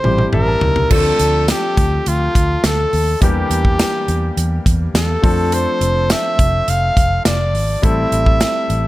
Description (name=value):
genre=1980s-style pop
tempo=104 BPM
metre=4/4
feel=straight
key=D minor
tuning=A4 = 440 Hz
part: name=clear flugelhorn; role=melody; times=0.0-8.9 s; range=F4 to F5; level=-18 LUFS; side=equal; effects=none
part: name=warm concert grand piano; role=accompaniment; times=0.0-8.9 s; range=E3 to A5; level=-23 LUFS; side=left 2 dB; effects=none
part: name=vintage muted fingered electric bass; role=bass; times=0.0-8.9 s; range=F1 to F2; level=-18 LUFS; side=equal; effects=none
part: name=modern studio drum kit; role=drums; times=0.0-8.8 s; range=crash cymbal, hi-hat, kick drum, snare drum, tambourine, toms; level=-17 LUFS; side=equal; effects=none
room=light reverb, studio reverb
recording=none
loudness=-13 LUFS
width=side -16 dB against mid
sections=0.9-8.9 A section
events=drum fill 0.0-0.9; grand piano fill 0.0-0.9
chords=0.0 Am7; 0.9 Dm7; 3.2 Em7b5; 5.2 Dm7/F; 7.8 Am7